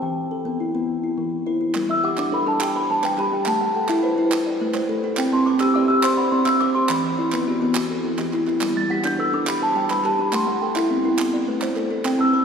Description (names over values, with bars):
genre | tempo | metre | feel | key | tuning
southern african traditional, mbira-style interlocking cycle | 140 BPM (dotted quarters) | 12/8 | straight | G major | A4 = 441 Hz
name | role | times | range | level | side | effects
celesta | melody | 0.0-12.4 s | G5 to B6 | -23 LUFS | equal | none
kalimba | arpeggios | 0.0-12.4 s | E3 to A5 | -22 LUFS | left 2 dB | none
group handclap | percussion | 1.7-12.2 s | none | -31 LUFS | right 4 dB | none
kalimba | arpeggios | 1.9-12.4 s | E3 to B5 | -25 LUFS | right 4 dB | none
room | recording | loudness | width
wet church reverb, RT60 3.1 s | recorded in a church or concert hall, lossy compression artefacts | -19 LUFS | side -6 dB against mid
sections
0.0-1.7 A section; 1.7-12.4 B section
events
none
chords
0.0 Em; 1.7 G; 3.5 Am; 5.2 C; 6.9 Em; 8.6 G; 10.3 Am